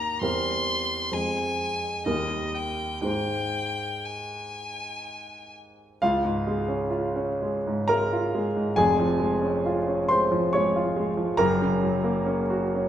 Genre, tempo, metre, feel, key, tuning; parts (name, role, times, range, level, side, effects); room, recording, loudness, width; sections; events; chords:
classical, romantic duo for violin and grand piano; 59-71 BPM; 3/4; rubato; Ab major, Db major from 6.0 s; A4 = 440 Hz
rich violin; melody; 0.0-5.5 s; Eb5 to C6; -29 LUFS; left 2 dB
warm concert grand piano; accompaniment; 0.0-12.9 s; F1 to Db6; -24 LUFS; equal
wet recital hall reverb, RT60 1.5 s; minimal, uncompressed stereo recording; -23 LUFS; side -10 dB against mid
0.0-6.0 A section; 6.0-12.9 B section
0.2 C7/E; 1.1 Fm; 2.1 Eb; 3.1 Ab; 6.0 Db; 8.8 Db/F; 11.4 Gb